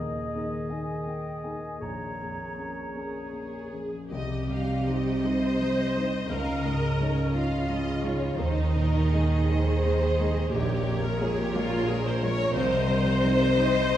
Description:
cinematic; 51-60 BPM (dotted quarters); 6/8; rubato; A4 = 440 Hz
mellow hollow concert flute; second line; 0.0-3.7 s; Eb5 to Bb5; -40 LUFS; left 1 dB
warm clarinet; second line; 0.0-3.7 s; Ab4; -41 LUFS; right 4 dB
warm oboe; second line; 0.0-3.7 s; Db5 to Eb5; -39 LUFS; equal
dark grand piano; accompaniment; 0.0-14.0 s; Bb1 to Eb5; -32 LUFS; left 1 dB
concert harp; arpeggios; 0.0-14.0 s; Bb2 to Eb5; -34 LUFS; left 3 dB
rich studio viola section; accompaniment; 3.0-14.0 s; Eb4 to Db5; -30 LUFS; equal
rich symphonic violin section; melody; 4.1-14.0 s; Db5 to Eb5; -38 LUFS; left 3 dB
rich studio violin section; second line; 4.1-14.0 s; Ab4 to F5; -35 LUFS; left 1 dB
clear studio double bass section; bass; 4.1-14.0 s; Bb1 to Eb2; -30 LUFS; right 2 dB
warm studio cello section; bass; 4.1-14.0 s; Bb2 to Eb3; -30 LUFS; right 2 dB
wet recital hall reverb, RT60 1.3 s; heard from further back in the room; -24 LUFS; side -11 dB against mid
0.0-4.1 A section; 4.1-14.0 A section
0.0 Ebsus4; 1.8 Bbm7; 4.1 Cm; 6.3 Dbadd9; 8.4 Ebsus4; 10.5 Bbm7; 12.6 Cm

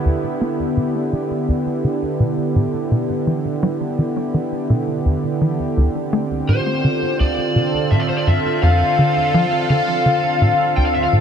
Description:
ambient, sequencer-driven space music; 84 BPM; 4/4; straight; E phrygian; A4 = 441 Hz
sweeping resonant pad; sustained chords; 0.0-11.2 s; D3 to A4; -20 LUFS; right 2 dB; chorus
tight sequencer bass; riff; 0.1-11.2 s; D2 to B3; -19 LUFS; equal; analog chorus, cassette tape, analog delay
lead guitar through a small cranked amp; melody; 6.5-11.1 s; C5 to G5; -19 LUFS; left 3 dB; overdrive, analog delay
moderate huge ambient reverb, RT60 9.3 s; -16 LUFS; side -8 dB against mid
0.0-11.2 A section
filter sweep on analog synth bass 0.0-11.2
0.0 Em7; 5.8 Dm7

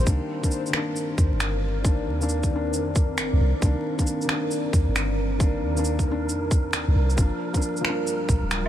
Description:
future garage; 135 BPM; 4/4; swing 65% on 16ths; C minor; A4 = 440 Hz
felt-muted upright piano; accompaniment; 0.0-8.7 s; Eb3 to D4; -29 LUFS; left 2 dB; sidechain pumping, ping-pong delay
deep dark ambient pad; sustained chords; 0.0-8.7 s; G3 to D5; -31 LUFS; right 1 dB; chorus, built-in reverb, vintage 12-bit sampler grit, sidechain pumping
soft 808-style bass; bass; 0.0-8.7 s; D1 to F2; -24 LUFS; equal; sidechain pumping
electronic kick drum; drums; 0.1-8.4 s; -22 LUFS; equal
electronic shaker, finger snaps and woodblock; drums; 0.1-8.7 s; -31 LUFS; right 1 dB
wind-like tuned noise texture; texture; 0.9-8.7 s; Bb4; -36 LUFS; right 4 dB; built-in reverb
little or no reverb; vinyl crackle; -21 LUFS; side -11 dB against mid
0.1-8.7 A section
0.1 Cm9; 7.2 Gm7

